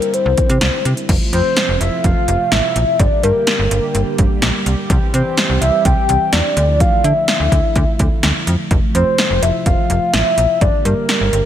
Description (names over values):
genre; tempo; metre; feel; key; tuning
synth-pop; 126 BPM; 4/4; straight; unclear; A4 = 440 Hz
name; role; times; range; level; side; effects
soft octave-layered synth lead; melody; 0.0-11.5 s; Bb4 to G5; -17 LUFS; left 1 dB; chorus, phaser, tape echo
chorused pulse-width pad; sustained chords; 0.0-11.5 s; C3 to G4; -24 LUFS; right 1 dB; none
deep house drum kit; drums; 0.0-11.4 s; crash cymbal, hi-hat, kick drum, snare drum; -17 LUFS; equal; gated reverb
slap-like FM bass; bass; 0.3-11.4 s; F1 to D3; -17 LUFS; equal; none
room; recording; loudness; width
light reverb, digital ambience; none; -13 LUFS; side -10 dB against mid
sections
0.0-1.1 A section; 1.1-11.5 B section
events
none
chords
0.0 Cadd9; 1.1 F; 3.0 Gm; 4.9 C; 6.6 Dmadd9; 8.7 F; 10.6 Gm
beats
0.14 0.61 | 1.09 1.57 2.04 2.52 | 3.00 3.47 3.95 4.42 | 4.90 5.38 5.85 6.33 | 6.80 7.28 7.76 8.23 | 8.71 9.19 9.66 10.14 | 10.61 11.09